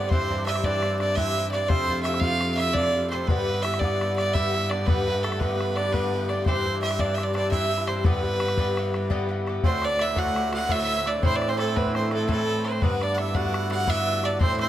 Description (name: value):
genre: celtic folk, Celtic slip jig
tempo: 113 BPM (dotted quarters)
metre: 9/8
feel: straight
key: G mixolydian, D mixolydian from 9.6 s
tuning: A4 = 438 Hz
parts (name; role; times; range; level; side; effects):
- clear fiddle; melody; 0.0-14.7 s; A4 to F#5; -26 LUFS; right 1 dB; none
- hammered dulcimer; second line; 0.0-14.7 s; A3 to G4; -32 LUFS; right 7 dB; none
- Irish bouzouki; accompaniment; 0.0-14.7 s; G2 to G4; -30 LUFS; left 5 dB; none
- bright cello; bass; 0.0-14.7 s; D2 to A2; -29 LUFS; equal; none
- bodhran; percussion; 0.1-14.7 s; none; -26 LUFS; left 1 dB; none
room: light reverb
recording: close, detailed microphones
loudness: -22 LUFS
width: side -12 dB against mid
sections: 0.0-9.6 A section; 9.6-14.7 B section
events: none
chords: 0.1 C/G; 1.7 F; 3.3 G; 6.5 C/G; 8.1 G; 9.6 D; 11.2 Am; 12.8 G